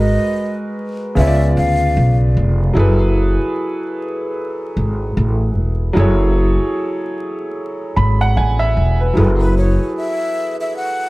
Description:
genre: lo-fi hip hop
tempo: 75 BPM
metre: 4/4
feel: swing 59% on 16ths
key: F# minor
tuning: A4 = 440 Hz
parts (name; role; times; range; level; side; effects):
- breathy jazz flute; melody; 0.0-2.2, 9.4-11.1 s; B4 to F#5; -21 LUFS; left 1 dB; none
- warm upright piano; accompaniment; 0.0-11.1 s; C#3 to B5; -19 LUFS; right 1 dB; none
- upright bass; bass; 0.0-9.8 s; E1 to D2; -14 LUFS; equal; none
room: light reverb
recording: dark, warm production, vinyl crackle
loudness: -14 LUFS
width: side -20 dB against mid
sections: 0.0-9.2 A section; 9.2-11.1 B section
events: none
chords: 0.0 G#m9; 1.2 C#7b9; 2.8 F#m11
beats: 0.36 1.16 1.96 | 2.76 3.56 4.36 5.16 | 5.96 6.76 7.56 8.36 | 9.16 9.96 10.76

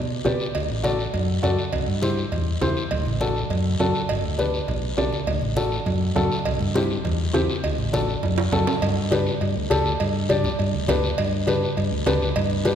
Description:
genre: latin, cumbia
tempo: 203 BPM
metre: 4/4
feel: straight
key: G major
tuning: A4 = 440 Hz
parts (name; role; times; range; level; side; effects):
- hollow-body short-scale fingered electric bass; bass; 0.0-12.8 s; G1 to B2; -25 LUFS; equal; none
- congas; percussion; 0.1-12.7 s; none; -30 LUFS; right 1 dB; none
- dark upright piano; accompaniment; 0.2-12.8 s; C4 to D5; -25 LUFS; left 2 dB; none
- guiro; percussion; 0.3-12.8 s; none; -34 LUFS; left 3 dB; none
- timbales and cowbell; percussion; 0.3-12.8 s; none; -30 LUFS; right 4 dB; none
room: wet concert hall reverb, RT60 2.2 s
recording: recorded in a church or concert hall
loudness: -20 LUFS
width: side -8 dB against mid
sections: 0.0-8.8 A section; 8.8-12.8 B section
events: drum fill 8.2-8.8, 12.4-12.8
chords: 0.0 G; 0.6 D; 1.7 C; 2.9 D; 4.1 G; 5.3 D; 6.5 C; 7.6 D; 8.8 G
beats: 0.25 | 0.55 0.84 1.14 1.44 | 1.73 2.03 2.32 2.62 | 2.91 3.21 3.50 3.80 | 4.09 4.39 4.68 4.98 | 5.28 5.57 5.87 6.16 | 6.46 6.75 7.05 7.34 | 7.64 7.93 8.23 8.53 | 8.82 9.12 9.41 9.71 | 10.00 10.30 10.59 10.89 | 11.18 11.48 11.77 12.07 | 12.36 12.66

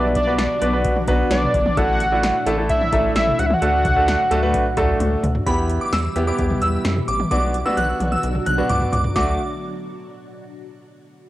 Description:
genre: synth-pop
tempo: 130 BPM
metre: 4/4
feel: straight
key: D major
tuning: A4 = 440 Hz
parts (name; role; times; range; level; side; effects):
- fat analog lead; melody; 0.0-5.0 s; D5 to F#5; -20 LUFS; equal; chorus, tape echo
- clear concert grand piano; accompaniment; 0.0-9.4 s; A3 to B4; -23 LUFS; right 1 dB; cassette tape
- soft string machine; sustained chords; 0.0-9.4 s; A2 to G4; -29 LUFS; equal; phaser, ensemble chorus, cassette tape
- rubbery square bass; bass; 0.0-9.4 s; G1 to F#2; -23 LUFS; equal; none
- electro analog drum machine; drums; 0.2-9.3 s; cowbell, hi-hat, kick drum, snare drum, toms; -24 LUFS; equal; overdrive
- shimmering bell with halo; second line; 5.5-9.4 s; B5 to F#6; -24 LUFS; right 1 dB; ensemble chorus, cassette tape, tape echo
room: moderate spring reverb, RT60 1.9 s, digital ambience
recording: home recording on cassette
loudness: -17 LUFS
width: side -15 dB against mid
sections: 0.0-5.5 A section; 5.5-9.2 B section; 9.2-11.0 C section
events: drum fill 5.0-5.5, 7.3-9.2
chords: 0.0 Bm; 1.8 Asus4; 3.6 D; 5.5 Em; 7.3 Bm; 9.2 D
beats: 0.39 0.85 1.31 | 1.77 2.23 2.69 3.16 | 3.62 4.08 4.54 5.00 | 5.46 5.93 6.39 6.85 | 7.31 7.77 8.23 8.70 | 9.16

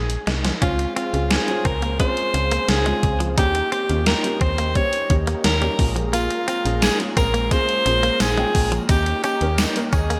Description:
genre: 1980s-style pop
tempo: 87 BPM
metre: 4/4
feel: straight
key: unclear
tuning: A4 = 440 Hz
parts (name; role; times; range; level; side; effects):
- bright alto saxophone; melody; 0.0-10.2 s; F4 to Db5; -25 LUFS; equal; digital delay
- dark baby grand piano; accompaniment; 0.0-10.2 s; Ab3 to G5; -31 LUFS; equal; analog chorus
- slap-like FM bass; bass; 0.0-10.2 s; Bb1 to Eb2; -26 LUFS; equal; none
- gated 80s digital drum machine; drums; 0.1-10.2 s; hi-hat, kick drum, snare drum; -24 LUFS; equal; gated reverb, gated reverb snare
- direct-recorded clean electric guitar; riff; 0.3-10.2 s; F3 to Eb4; -32 LUFS; equal; subtle chorus, digital delay
- string machine, cellos; sustained chords; 0.6-10.2 s; Ab4 to C6; -35 LUFS; equal; none
- tambourine; percussion; 6.1-10.2 s; none; -40 LUFS; equal; none
room: moderate plate reverb, RT60 2.9 s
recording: bright 1980s-style digital production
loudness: -20 LUFS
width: mono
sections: 0.6-10.2 A section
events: drum fill 0.0-0.6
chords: 0.0 Bbm7; 0.6 Dbmaj7; 3.4 Eb7; 5.8 Bbm7; 8.9 Eb7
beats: | 0.62 1.31 2.00 2.69 | 3.38 4.07 4.75 5.44 | 6.13 6.82 7.51 8.20 | 8.89 9.58

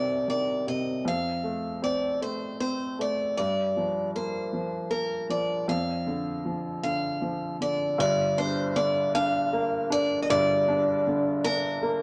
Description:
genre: acoustic folk-pop ballad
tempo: 52 BPM (dotted quarters)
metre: 6/8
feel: straight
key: G minor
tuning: A4 = 435 Hz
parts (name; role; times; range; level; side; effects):
- picked steel-string acoustic guitar; melody; 0.0-12.0 s; Bb4 to F5; -30 LUFS; equal; none
- felt-muted upright piano; accompaniment; 0.0-12.0 s; G1 to D4; -31 LUFS; equal; none
room: moderate club reverb, RT60 0.8 s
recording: none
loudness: -27 LUFS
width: mono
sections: 0.0-8.0 A section; 8.0-12.0 B section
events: none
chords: 0.0 Cm; 1.1 F; 3.4 Gm7; 5.7 Dm/F; 8.0 Gm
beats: | 1.05 2.21 | 3.36 4.52 | 5.67 6.83 | 7.98 9.13 | 10.29 11.44

